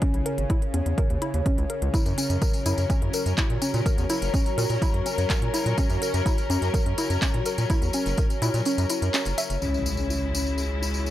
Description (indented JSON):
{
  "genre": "melodic techno",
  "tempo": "125 BPM",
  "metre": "4/4",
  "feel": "straight",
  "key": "unclear",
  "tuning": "A4 = 440 Hz",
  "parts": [
    { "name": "warbly dusty pluck", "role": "arpeggios", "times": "0.0-11.1 s", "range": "C#4 to E5", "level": "-31 LUFS", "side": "equal", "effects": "chorus, cassette tape, sidechain pumping, analog delay" },
    { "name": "bowed-like drone", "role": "drone", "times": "0.0-9.7 s", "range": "C#3", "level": "-37 LUFS", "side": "left 1 dB", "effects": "none" },
    { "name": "electronic kick drum", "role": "drums", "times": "0.0-8.3 s", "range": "none", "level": "-24 LUFS", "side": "equal", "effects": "none" },
    { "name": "techno drum kit", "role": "drums", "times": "0.0-9.6 s", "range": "handclaps, hi-hat", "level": "-32 LUFS", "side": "equal", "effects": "none" },
    { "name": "warbly tape-like pad", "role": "texture", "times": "0.0-11.1 s", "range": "E4 to A#5", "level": "-32 LUFS", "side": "left 1 dB", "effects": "chorus, built-in reverb, phaser, sidechain pumping" },
    { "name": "round analog bass", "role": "bass", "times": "0.1-11.1 s", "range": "F#1 to A#2", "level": "-26 LUFS", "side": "equal", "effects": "sidechain pumping" },
    { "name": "clear symphonic string section", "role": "sustained chords", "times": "1.9-11.1 s", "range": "C#3 to A#4", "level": "-33 LUFS", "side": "left 2 dB", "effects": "sidechain pumping" },
    { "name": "tambourine", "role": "percussion", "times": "1.9-11.1 s", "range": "none", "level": "-34 LUFS", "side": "left 3 dB", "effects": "none" },
    { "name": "expressive portamento lead", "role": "melody", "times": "9.6-11.1 s", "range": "C#4", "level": "-32 LUFS", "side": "left 3 dB", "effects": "lush chorus, sidechain pumping, tape echo" },
    { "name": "impact", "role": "sound effects", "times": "9.6-11.1 s", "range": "none", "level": "-34 LUFS", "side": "equal", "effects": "none" }
  ],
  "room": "light reverb, digital ambience",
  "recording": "dry, gritty hardware recording",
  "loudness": "-22 LUFS",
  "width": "side -13 dB against mid",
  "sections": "0.0-9.6 A section; 9.6-11.1 B section",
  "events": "kick drops out 8.7-9.6; impact 9.6-11.1; filter sweep on analog synth lead 9.6-11.1",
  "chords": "0.0 C#m; 1.9 F#; 9.6 C#m"
}